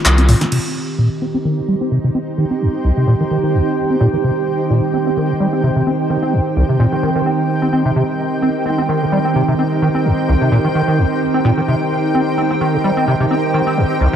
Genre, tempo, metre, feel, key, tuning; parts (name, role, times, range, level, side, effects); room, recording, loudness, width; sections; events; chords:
acid house; 129 BPM; 4/4; swing 54% on 16ths; C minor pentatonic; A4 = 440 Hz
warbly tape-like pad; sustained chords; 0.0-14.2 s; Eb3 to Bb4; -20 LUFS; right 2 dB; chorus, built-in reverb
punchy analog drum machine; drums; 0.1-0.6 s; crash cymbal, handclaps, hi-hat, snare drum; -19 LUFS; equal; overdrive
acid bass, square; riff; 0.2-14.2 s; C2 to C4; -17 LUFS; equal; tube saturation, ensemble chorus, cassette tape, analog delay
granular cloud pad; texture; 1.4-14.2 s; Eb4 to G5; -20 LUFS; right 1 dB; built-in reverb
moderate spring reverb, RT60 2.5 s; -14 LUFS; side -9 dB against mid
0.5-14.2 A section
band accent 0.1; filter sweep on acid bass 0.5-14.2
0.0 Cm